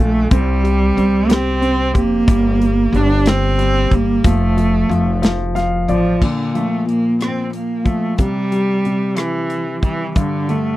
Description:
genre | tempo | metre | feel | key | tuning
six-eight pop ballad | 61 BPM (dotted quarters) | 6/8 | straight | Bb major | A4 = 440 Hz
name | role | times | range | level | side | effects
warm cello | melody | 0.0-10.8 s | D3 to D4 | -18 LUFS | right 2 dB | none
clear baby grand piano | accompaniment | 0.0-10.8 s | G2 to F5 | -20 LUFS | left 3 dB | none
upright bass | bass | 0.0-6.2 s | F1 to C2 | -18 LUFS | equal | none
modern studio drum kit | drums | 0.3-10.6 s | crash cymbal, hi-hat, kick drum, rim click, snare drum | -15 LUFS | equal | none
room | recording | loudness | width
light reverb | dry, close 1970s-style studio recording | -14 LUFS | side -16 dB against mid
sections
0.0-6.2 A section; 6.2-10.8 B section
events
grand piano fill 5.2-6.2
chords
0.3 C5; 2.3 Gm; 4.2 F; 6.2 Bb5; 8.2 C; 10.2 G5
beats
| 0.31 1.30 | 2.28 3.26 | 4.25 5.23 | 6.22 7.20 | 8.19 9.17 | 10.16

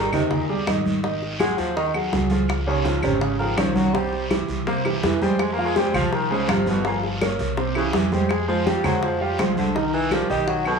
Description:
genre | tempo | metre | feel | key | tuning
Afro-Cuban jazz | 165 BPM | 4/4 | straight | F minor | A4 = 440 Hz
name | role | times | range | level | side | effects
clear baritone saxophone | second line | 0.0-10.8 s | Eb2 to Bb3 | -25 LUFS | left 2 dB | cassette tape
warm baby grand piano | accompaniment | 0.0-10.8 s | C3 to F5 | -24 LUFS | right 3 dB | cassette tape
upright bass | bass | 0.0-10.8 s | G1 to F2 | -28 LUFS | right 1 dB | none
claves | percussion | 0.1-10.8 s | none | -34 LUFS | left 2 dB | none
congas | percussion | 0.1-10.8 s | none | -26 LUFS | right 1 dB | none
guiro | percussion | 0.1-10.8 s | none | -34 LUFS | right 3 dB | none
bongos | percussion | 0.3-10.8 s | none | -29 LUFS | left 6 dB | none
room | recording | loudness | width
moderate spring reverb, RT60 1.8 s, studio reverb | home recording on cassette | -20 LUFS | side -5 dB against mid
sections
0.0-8.3 A section; 8.3-10.8 A section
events
baritone saxophone solo 0.0-10.8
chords
0.0 Ab5; 2.5 Dbmaj9; 3.9 C; 5.4 Fmadd9; 6.8 Gm7b5; 7.6 C; 8.3 Fm; 9.8 Cm7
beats
0.31 0.67 | 1.03 1.40 1.76 2.12 | 2.49 2.85 3.21 3.58 | 3.94 4.30 4.67 5.03 | 5.39 5.76 6.12 6.49 | 6.85 7.21 7.57 7.94 | 8.30 8.66 9.03 9.39 | 9.75 10.12 10.48

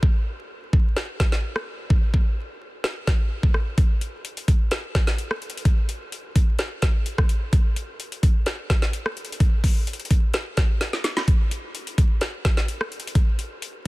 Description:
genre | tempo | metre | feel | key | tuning
hip hop | 128 BPM | 4/4 | half-time | none | none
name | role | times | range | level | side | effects
trap drum kit | drums | 0.0-13.7 s | hi-hat, kick drum, rim click, snare drum | -20 LUFS | equal | soft clipping on snare
room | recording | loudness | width
little or no reverb | dense, heavily limited modern master, vinyl crackle | -20 LUFS | side -21 dB against mid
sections
0.0-11.3 A section; 11.3-13.9 B section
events
break 0.0-3.8; drum fill 10.8-11.3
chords
none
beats
| 0.03 0.50 0.96 1.43 | 1.90 2.37 2.84 3.31 | 3.78 4.25 4.71 5.18 | 5.65 6.12 6.59 7.06 | 7.53 8.00 8.46 8.93 | 9.40 9.87 10.34 10.81 | 11.28 11.75 12.21 12.68 | 13.15 13.62

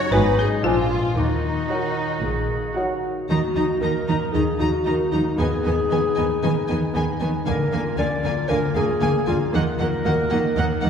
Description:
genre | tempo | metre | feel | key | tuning
cinematic, playful, whimsical film cue | 115 BPM | 4/4 | straight | Eb minor | A4 = 439 Hz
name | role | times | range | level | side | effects
folk marimba with hard mallets | melody | 0.0-2.7 s | Eb4 to Cb5 | -26 LUFS | left 7 dB | none
warm oboe | second line | 0.0-3.0 s | D4 to Gb4 | -30 LUFS | right 1 dB | none
warm studio violin section | second line | 0.0-10.9 s | Eb4 to F5 | -32 LUFS | equal | none
dark French horn section | sustained chords | 0.0-10.2 s | Eb3 to Bb4 | -34 LUFS | left 2 dB | none
concert harp | arpeggios | 0.0-10.9 s | Gb2 to Cb5 | -28 LUFS | left 4 dB | none
warm studio violin section | melody | 0.1-10.9 s | Gb5 to Bb5 | -32 LUFS | left 1 dB | none
mellow clarinet | second line | 0.1-10.9 s | D4 to D5 | -25 LUFS | left 2 dB | none
mellow hollow silver concert flute | second line | 0.1-2.9 s | Gb5 to Ab5 | -31 LUFS | right 1 dB | none
mellow bassoon | accompaniment | 0.1-2.9 s | F3 to Gb3 | -31 LUFS | right 2 dB | none
warm studio viola section | accompaniment | 0.1-10.9 s | Bb3 to Gb4 | -29 LUFS | right 1 dB | none
dark studio cello section | bass | 0.1-10.9 s | Ab2 to Eb3 | -26 LUFS | right 3 dB | none
warm studio double bass section | bass | 0.1-10.9 s | Ab1 to Eb2 | -28 LUFS | right 2 dB | none
room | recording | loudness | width
wet scoring stage reverb, RT60 1.7 s | heard from further back in the room | -19 LUFS | side -7 dB against mid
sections
0.0-3.3 A section; 3.3-10.9 B section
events
none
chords
0.1 Abm7; 0.6 Bb7; 1.2 Ebm; 5.4 Abm/Eb; 7.5 Bb7/D; 9.5 Ebm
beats
0.12 0.64 | 1.17 1.71 2.23 2.77 | 3.29 3.82 4.34 4.86 | 5.38 5.91 6.42 6.94 | 7.46 7.98 8.49 9.01 | 9.53 10.05 10.57

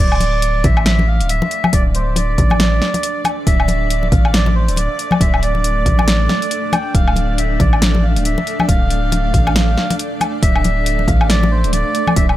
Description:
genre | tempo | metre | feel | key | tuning
deep dubstep | 138 BPM | 4/4 | swing 59% on 16ths, half-time | D minor | A4 = 440 Hz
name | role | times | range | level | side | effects
melodica | melody | 0.0-12.3 s | C5 to G5 | -21 LUFS | right 2 dB | dub echo
granular cloud pad | sustained chords | 1.0-12.4 s | A3 to D5 | -24 LUFS | right 1 dB | built-in reverb
soft dub sub bass | bass | 0.0-12.4 s | D1 to A1 | -16 LUFS | equal | none
deep house drum kit | drums | 0.1-12.4 s | hi-hat, snare drum, woodblock | -19 LUFS | left 1 dB | overdrive
congas | percussion | 0.2-12.3 s | none | -21 LUFS | left 3 dB | none
electronic kick drum | drums | 0.6-12.3 s | none | -16 LUFS | equal | overdrive
room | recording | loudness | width
little or no reverb | none | -13 LUFS | side -14 dB against mid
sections
0.0-12.4 A section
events
drop 0.0-12.4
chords
0.0 D5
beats
0.42 0.86 1.29 | 1.73 2.16 2.60 3.03 | 3.47 3.90 4.34 4.77 | 5.21 5.64 6.08 6.51 | 6.95 7.38 7.82 8.25 | 8.69 9.12 9.55 9.99 | 10.43 10.86 11.29 11.73 | 12.16

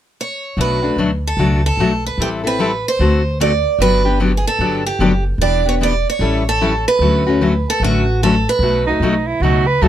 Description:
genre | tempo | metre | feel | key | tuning
acoustic string swing (jazz manouche) | 149 BPM | 4/4 | swing 63% on 8ths | D major | A4 = 440 Hz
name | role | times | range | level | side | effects
picked steel-string acoustic guitar | melody | 0.2-8.9 s | F#4 to D5 | -18 LUFS | right 4 dB | none
picked steel-string acoustic guitar | accompaniment | 0.6-9.9 s | B2 to A4 | -17 LUFS | left 4 dB | none
upright bass | bass | 0.6-9.9 s | E1 to D#2 | -19 LUFS | equal | none
warm soprano saxophone | second line | 8.9-9.9 s | D#4 to B4 | -17 LUFS | right 6 dB | none
room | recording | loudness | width
light reverb | close, detailed microphones | -14 LUFS | side -11 dB against mid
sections
0.6-7.0 A section; 7.0-9.9 B section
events
none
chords
0.0 N.C.; 0.6 Bm7; 2.2 Am7; 3.0 D7; 3.8 Gmaj9; 5.4 Em7; 6.2 A7; 7.0 Dmaj7; 8.6 B7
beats
0.17 | 0.58 0.98 1.38 1.78 | 2.18 2.58 2.99 3.39 | 3.79 4.19 4.59 5.00 | 5.40 5.80 6.20 6.60 | 7.00 7.41 7.81 8.21 | 8.61 9.02 9.42 9.82

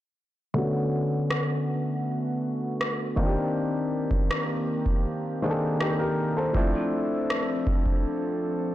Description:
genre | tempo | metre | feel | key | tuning
contemporary R&B | 80 BPM | 4/4 | straight | unclear | A4 = 440 Hz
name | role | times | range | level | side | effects
warm grand piano | accompaniment | 0.5-8.7 s | D3 to C5 | -27 LUFS | left 1 dB | low-pass filter
warm analog pad | sustained chords | 0.5-8.7 s | D3 to A4 | -31 LUFS | equal | chorus, low-pass filter
booming analog drum machine | drums | 1.3-8.0 s | kick drum, rim click | -26 LUFS | equal | soft clipping on snare, vintage 12-bit sampler grit
room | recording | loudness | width
light reverb | blown-out, overdriven recording, overdrive | -24 LUFS | side -14 dB against mid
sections
0.5-8.7 A section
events
filter sweep 0.5-8.7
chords
0.5 Bm7; 3.2 Cm7; 6.5 Dm7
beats
| 0.55 1.30 2.05 2.80 | 3.55 4.30 5.05 5.80 | 6.55 7.30 8.05

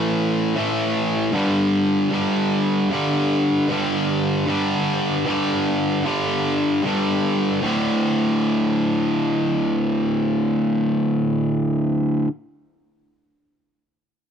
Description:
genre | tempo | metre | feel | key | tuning
metal | 153 BPM | 4/4 | straight | unclear | A4 = 440 Hz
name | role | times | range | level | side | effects
distorted electric guitar | solo | 0.0-12.3 s | D2 to A3 | -18 LUFS | equal | overdrive
room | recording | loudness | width
little or no reverb | dry, close 1970s-style studio recording | -18 LUFS | side -8 dB against mid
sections
0.0-1.3 A section; 1.3-7.6 B section; 7.6-10.8 C section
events
half time 0.0-1.3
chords
0.0 A5; 1.3 G5; 7.6 D5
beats
0.17 0.56 0.95 | 1.34 1.73 2.12 2.51 | 2.90 3.29 3.69 4.08 | 4.47 4.87 5.26 5.65 | 6.04 6.44 6.83 7.22 | 7.62 8.01 8.41 8.80 | 9.20 9.59 9.99 10.38

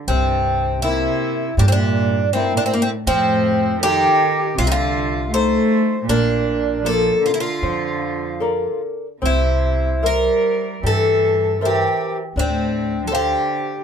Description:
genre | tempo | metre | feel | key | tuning
fado-style ballad | 78 BPM | 4/4 | uneven beats, rubato | unclear | A4 = 439 Hz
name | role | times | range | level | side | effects
picked twelve-string acoustic guitar | melody | 0.1-13.8 s | Bb3 to C5 | -20 LUFS | left 1 dB | none
dark cello | second line | 0.1-13.8 s | G2 to A3 | -23 LUFS | right 3 dB | none
flamenco guitar | accompaniment | 0.1-13.7 s | C3 to F5 | -23 LUFS | left 1 dB | none
upright bass | bass | 0.1-13.3 s | Bb1 to G2 | -22 LUFS | equal | none
room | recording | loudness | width
light reverb | minimal, uncompressed stereo recording | -16 LUFS | side -7 dB against mid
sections
0.0-13.8 A section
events
none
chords
0.1 C7; 3.1 F7; 6.1 Bbmaj7; 9.2 C7; 12.4 Dm7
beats
| 0.09 0.84 1.59 2.33 | 3.07 3.83 4.58 5.33 | 6.08 6.84 7.62 8.42 | 9.23 10.04 10.84 11.62 | 12.37 13.12

